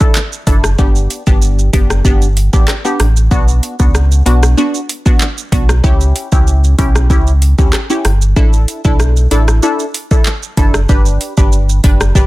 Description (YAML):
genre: dancehall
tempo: 95 BPM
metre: 4/4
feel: straight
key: unclear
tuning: A4 = 437 Hz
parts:
  - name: punchy chord stab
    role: accompaniment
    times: 0.0-12.3 s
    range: B3 to B4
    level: -18 LUFS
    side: left 1 dB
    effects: chorus
  - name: afro-pop drum kit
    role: drums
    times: 0.0-12.3 s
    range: handclaps, hi-hat, kick drum, rim click, shaker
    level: -12 LUFS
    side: equal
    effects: overdrive
  - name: sub bass with octave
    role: bass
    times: 0.5-12.3 s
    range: F#1 to D2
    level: -11 LUFS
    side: equal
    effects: none
room: digital ambience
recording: dense, heavily limited modern master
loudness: -9 LUFS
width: side -18 dB against mid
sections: 0.0-12.3 A section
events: none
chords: 0.0 Asus4; 0.8 G; 3.3 Bm; 5.8 C#dim; 8.4 Asus4; 10.9 G